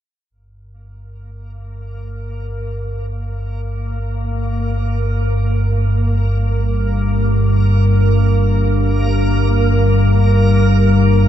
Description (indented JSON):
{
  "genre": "dark ambient drone",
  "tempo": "free time",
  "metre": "none",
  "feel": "none",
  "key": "G minor",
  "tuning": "A4 = 440 Hz",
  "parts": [
    { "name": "deep rumbling drone", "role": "drone", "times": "1.2-11.3 s", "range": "G1 to G2", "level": "-15 LUFS", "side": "equal", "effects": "built-in reverb, wide subtle chorus" },
    { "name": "backwards swelling texture", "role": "texture", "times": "1.8-11.3 s", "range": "Bb3 to Bb4", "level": "-22 LUFS", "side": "right 2 dB", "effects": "built-in reverb" }
  ],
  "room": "light reverb",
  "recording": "dark, warm production",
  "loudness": "-14 LUFS",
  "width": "side -10 dB against mid",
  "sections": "0.3-11.3 A section",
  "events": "fade-in on synth texture 0.3-11.3",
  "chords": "0.3 Gm"
}